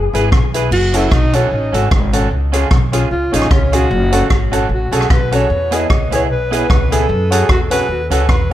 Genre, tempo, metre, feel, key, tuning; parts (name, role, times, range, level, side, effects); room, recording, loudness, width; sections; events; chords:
ska; 151 BPM; 4/4; swing 56% on 8ths; F# dorian; A4 = 438 Hz
upright bass; bass; 0.0-8.5 s; F#1 to F#2; -17 LUFS; equal
electric guitar at the edge of break-up; accompaniment; 0.1-8.3 s; B3 to B4; -22 LUFS; right 6 dB; dub echo
dark upright piano; stabs; 0.1-8.5 s; B3 to B4; -21 LUFS; left 2 dB; dub echo
swinging big-band drum kit; drums; 0.1-8.4 s; crash cymbal, hi-hat, kick drum, rim click; -16 LUFS; equal
breathy alto saxophone; melody; 0.7-8.5 s; C#4 to D#5; -19 LUFS; equal; dub echo
light reverb; -12 LUFS; side -13 dB against mid
0.7-8.5 A section
alto saxophone solo 0.7-8.5
0.0 E; 0.7 F#m; 2.3 C#; 3.9 F#m; 5.5 E; 7.1 F#m